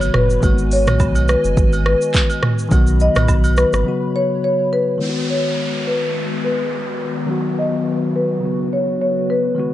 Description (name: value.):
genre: afrobeats.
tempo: 105 BPM.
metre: 4/4.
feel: swing 55% on 16ths.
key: unclear.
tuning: A4 = 440 Hz.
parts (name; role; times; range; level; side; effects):
bell-like tine electric piano; accompaniment; 0.0-9.7 s; C#3 to F#4; -22 LUFS; left 3 dB; low-pass filter.
hollow soft pad; sustained chords; 0.0-9.7 s; C#3 to B5; -27 LUFS; left 1 dB; ensemble chorus, low-pass filter.
warm sub bass; bass; 0.0-3.8 s; F#1 to B1; -17 LUFS; right 1 dB; none.
afro-pop drum kit; drums; 0.0-3.9 s; handclaps, hi-hat, kick drum, rim click, shaker, toms; -17 LUFS; right 1 dB; overdrive.
agogo bells and woodblock; percussion; 0.0-3.6 s; none; -28 LUFS; right 4 dB; none.
marimba with medium mallets; melody; 0.2-9.4 s; B4 to D#5; -20 LUFS; left 1 dB; low-pass filter, analog delay.
downlifter and swell; sound effects; 5.0-9.7 s; none; -28 LUFS; right 1 dB; none.
room: little or no reverb.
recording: dry, gritty hardware recording, nothing above 10.3 kHz.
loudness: -15 LUFS.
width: side -13 dB against mid.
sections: 0.0-5.0 A section; 5.0-9.7 B section.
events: break 3.9-5.0; filter sweep 5.0-9.7.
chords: 0.4 G#m7; 2.7 B; 3.9 F#sus4; 5.0 G#m7; 7.3 B; 8.4 F#sus4.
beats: | 0.43 1.00 1.57 2.14 | 2.71 3.29 3.86 4.43 | 5.00 5.57 6.14 6.71 | 7.29 7.86 8.43 9.00 | 9.57.